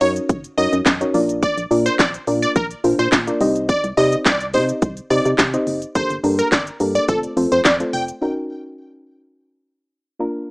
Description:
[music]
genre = dance-pop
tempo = 106 BPM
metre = 4/4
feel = straight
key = unclear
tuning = A4 = 439 Hz
[part]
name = plucky unison lead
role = melody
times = 0.0-8.0 s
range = A4 to G5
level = -20 LUFS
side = equal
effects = phaser
[part]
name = soft round pluck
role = accompaniment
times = 0.0-10.5 s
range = A3 to Eb5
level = -21 LUFS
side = equal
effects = chorus, sidechain pumping, plate reverb
[part]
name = organ-like FM bass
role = bass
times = 0.0-8.1 s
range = F1 to C3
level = -22 LUFS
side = equal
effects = sidechain pumping
[part]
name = house drum kit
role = drums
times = 0.0-8.2 s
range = handclaps, hi-hat, kick drum, shaker, snare drum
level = -19 LUFS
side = equal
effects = none
[sound]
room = moderate studio reverb, RT60 0.6 s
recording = rough home demo mix, small speaker sound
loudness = -16 LUFS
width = side -30 dB against mid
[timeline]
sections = 0.0-8.2 A section; 8.2-10.5 B section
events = drop 0.0-8.2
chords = 0.0 Gb6; 1.1 Bb; 3.4 Cm; 6.0 Gmadd9; 7.1 F; 8.2 Gb6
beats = 0.29 0.86 | 1.43 1.99 2.56 3.12 | 3.69 4.26 4.82 5.39 | 5.95 6.52 7.09 7.65 | 8.22 8.78 9.35 9.92 | 10.48

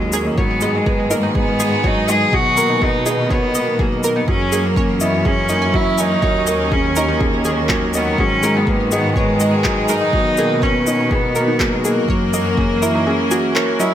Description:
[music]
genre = piano and strings electronica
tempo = 123 BPM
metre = 4/4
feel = straight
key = G# minor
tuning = A4 = 439 Hz
[part]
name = rich cello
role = melody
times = 0.0-13.9 s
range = G#3 to G#4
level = -20 LUFS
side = right 1 dB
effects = digital delay
[part]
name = rich chamber string section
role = sustained chords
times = 0.0-13.9 s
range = D#3 to A#4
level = -24 LUFS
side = equal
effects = sidechain pumping
[part]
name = felt-muted upright piano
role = riff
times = 0.0-13.9 s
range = F#3 to A#4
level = -21 LUFS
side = equal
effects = digital delay
[part]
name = dark symphonic cello section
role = bass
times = 0.0-13.1 s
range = D#2 to B2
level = -22 LUFS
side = left 1 dB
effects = tube saturation, sidechain pumping
[part]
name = analog pluck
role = arpeggios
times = 0.1-13.9 s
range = D#4 to G#5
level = -25 LUFS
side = right 2 dB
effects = chorus, sidechain pumping, digital delay
[part]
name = electronic shaker and handclaps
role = drums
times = 0.1-13.9 s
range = none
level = -24 LUFS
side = left 2 dB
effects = overdrive
[part]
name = electronic kick drum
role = drums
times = 0.4-12.7 s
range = none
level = -21 LUFS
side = equal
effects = none
[sound]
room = light reverb, small room ambience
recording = none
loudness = -14 LUFS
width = side -10 dB against mid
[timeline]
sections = 0.0-13.9 A section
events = none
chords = 0.4 G#m7; 2.3 Bmaj7; 4.3 F#7; 6.2 D#m7; 8.2 G#m7; 10.1 Bmaj7; 12.1 F#7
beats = | 0.38 0.87 1.35 1.84 | 2.33 2.82 3.31 3.79 | 4.28 4.77 5.26 5.74 | 6.23 6.72 7.21 7.70 | 8.18 8.67 9.16 9.65 | 10.13 10.62 11.11 11.60 | 12.09 12.57 13.06 13.55

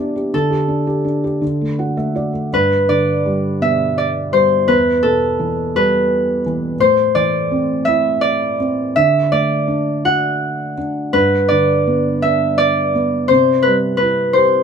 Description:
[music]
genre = children's music, lullaby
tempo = 55 BPM (dotted quarters)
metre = 6/8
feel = rubato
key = G major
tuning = A4 = 439 Hz
[part]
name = concert harp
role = melody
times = 0.0-14.6 s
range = A4 to F#5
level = -15 LUFS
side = equal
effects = none
[part]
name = felt-muted upright piano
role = accompaniment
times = 0.0-14.6 s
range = E2 to F#5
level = -19 LUFS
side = right 1 dB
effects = none
[sound]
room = light reverb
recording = minimal, uncompressed stereo recording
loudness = -14 LUFS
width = side -6 dB against mid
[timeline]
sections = 0.0-2.5 A section; 2.5-14.6 B section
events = felt piano fill 1.4-2.5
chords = 0.3 Dsus4; 1.4 D; 2.5 G; 4.7 Em; 6.8 Am; 8.9 D; 11.1 G; 13.3 C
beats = | 0.33 1.42 | 2.52 3.60 | 4.67 5.73 | 6.78 7.86 | 8.95 10.04 | 11.14 12.24 | 13.30 14.35

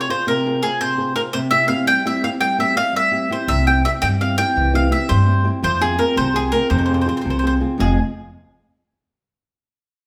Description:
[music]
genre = italian folk, Italian serenade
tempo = 112 BPM (dotted quarters)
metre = 6/8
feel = straight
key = F harmonic minor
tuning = A4 = 440 Hz
[part]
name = bowl-back mandolin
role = melody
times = 0.0-8.0 s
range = Ab4 to G5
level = -21 LUFS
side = equal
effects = none
[part]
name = flamenco guitar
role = accompaniment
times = 0.0-8.0 s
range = F2 to C5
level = -24 LUFS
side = equal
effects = none
[part]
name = upright bass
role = bass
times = 3.5-8.0 s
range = F1 to G2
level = -22 LUFS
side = equal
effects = none
[sound]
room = wet large studio reverb, RT60 1.0 s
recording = band playing live in one room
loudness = -18 LUFS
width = mono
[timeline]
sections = 0.0-7.8 A section; 7.8-8.9 B section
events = none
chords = 0.0 Fm; 1.3 C; 5.6 Fm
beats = | 0.26 0.80 | 1.33 1.86 | 2.40 2.94 | 3.48 4.03 | 4.57 5.11 | 5.64 6.17 | 6.71 7.25 | 7.80

